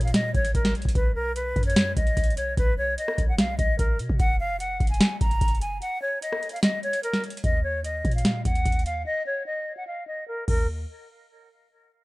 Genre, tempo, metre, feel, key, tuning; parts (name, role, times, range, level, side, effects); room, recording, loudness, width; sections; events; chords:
hip hop, trap; 148 BPM; 4/4; half-time; Eb minor; A4 = 439 Hz
breathy silver concert flute; melody; 0.0-10.7 s; Bb4 to Bb5; -28 LUFS; equal; low-pass filter
clean 808-style bass; bass; 0.0-10.9 s; F1 to B2; -30 LUFS; equal
booming analog drum machine; drums; 0.0-10.7 s; crash cymbal, hi-hat, kick drum, rim click, snare drum; -23 LUFS; equal; overdrive, vintage 12-bit sampler grit
little or no reverb; rough home demo mix; -22 LUFS; side -21 dB against mid
0.0-7.4 A section; 7.4-10.7 B section; 10.7-12.0 C section
break 5.8-7.4, 9.1-10.7; filter sweep on flute 7.4-10.7
0.0 N.C.; 1.0 B; 4.2 N.C.; 7.4 Eb5; 10.7 N.C.